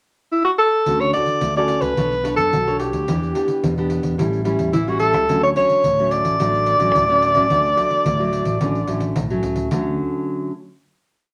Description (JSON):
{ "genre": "samba and choro", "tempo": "108 BPM", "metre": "4/4", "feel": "straight", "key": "D major", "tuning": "A4 = 440 Hz", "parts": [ { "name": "breathy alto saxophone", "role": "melody", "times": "0.3-9.2 s", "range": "E4 to D5", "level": "-20 LUFS", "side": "equal", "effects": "none" }, { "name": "nylon-string guitar", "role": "accompaniment", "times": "0.9-10.5 s", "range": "A2 to C#5", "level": "-25 LUFS", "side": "equal", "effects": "none" }, { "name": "fingered electric bass", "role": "bass", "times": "0.9-10.0 s", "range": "A1 to F#2", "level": "-28 LUFS", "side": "equal", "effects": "none" }, { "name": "pandeiro", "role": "percussion", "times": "0.9-9.8 s", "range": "none", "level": "-29 LUFS", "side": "equal", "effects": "none" } ], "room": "wet small room reverb, RT60 0.5 s", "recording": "none", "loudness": "-19 LUFS", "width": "mono", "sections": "0.0-0.9 pickup bar; 0.9-9.7 A section; 9.7-11.3 final chord", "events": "none", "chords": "0.0 N.C.; 0.9 Dmaj7; 2.0 Bm9; 3.1 Em7; 4.2 A7; 5.3 Dmaj7" }